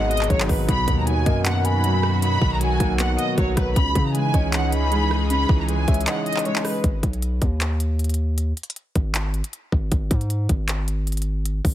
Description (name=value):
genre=hip hop, trap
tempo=156 BPM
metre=4/4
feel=half-time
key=G# minor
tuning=A4 = 440 Hz
part: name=warm studio violin section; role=melody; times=0.0-6.8 s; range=B4 to B5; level=-26 LUFS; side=right 1 dB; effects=low-pass filter, ping-pong delay
part: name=warm velvety synth lead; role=second line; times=0.0-6.8 s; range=B4 to G#5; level=-30 LUFS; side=left 3 dB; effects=chorus, ping-pong delay
part: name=warm concert grand piano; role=accompaniment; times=0.0-6.9 s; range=G#2 to D#4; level=-26 LUFS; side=right 1 dB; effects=none
part: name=sweeping resonant pad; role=sustained chords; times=0.0-6.8 s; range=B2 to G#4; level=-28 LUFS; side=equal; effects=chorus
part: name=distorted 808-style bass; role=bass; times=0.0-11.7 s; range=G#1 to C#3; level=-23 LUFS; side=equal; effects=distortion
part: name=trap drum kit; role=drums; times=0.1-11.7 s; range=handclaps, hi-hat, kick drum, rim click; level=-23 LUFS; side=equal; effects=none
room=little or no reverb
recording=dense, heavily limited modern master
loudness=-19 LUFS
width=side -12 dB against mid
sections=0.0-6.8 A section; 6.8-11.7 B section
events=break 6.1-6.8, 6.8-11.7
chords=0.0 G#m7; 0.7 Bmaj7; 3.8 C#madd9; 6.8 G#5